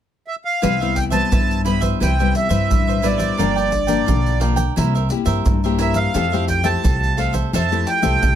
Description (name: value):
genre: samba and choro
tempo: 87 BPM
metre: 4/4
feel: straight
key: C major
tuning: A4 = 440 Hz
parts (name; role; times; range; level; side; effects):
- accordion; melody; 0.3-8.4 s; D5 to B5; -21 LUFS; right 2 dB; none
- cavaquinho; accompaniment; 0.6-8.4 s; E4 to G5; -25 LUFS; right 9 dB; none
- nylon-string guitar; accompaniment; 0.6-8.4 s; G2 to G4; -22 LUFS; left 8 dB; none
- upright bass; bass; 0.6-8.4 s; G1 to G2; -22 LUFS; equal; none
- tube shaker, surdo and pandeiro; percussion; 0.6-8.4 s; none; -22 LUFS; equal; none
room: light reverb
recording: close, detailed microphones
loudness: -16 LUFS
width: side -10 dB against mid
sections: 0.6-8.4 A section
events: none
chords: 0.0 N.C.; 0.6 Cmaj7; 3.4 Gm7; 4.8 C7; 6.2 Fmaj9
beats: | 0.63 1.32 2.01 2.70 | 3.39 4.08 4.78 5.47 | 6.16 6.85 7.54 8.23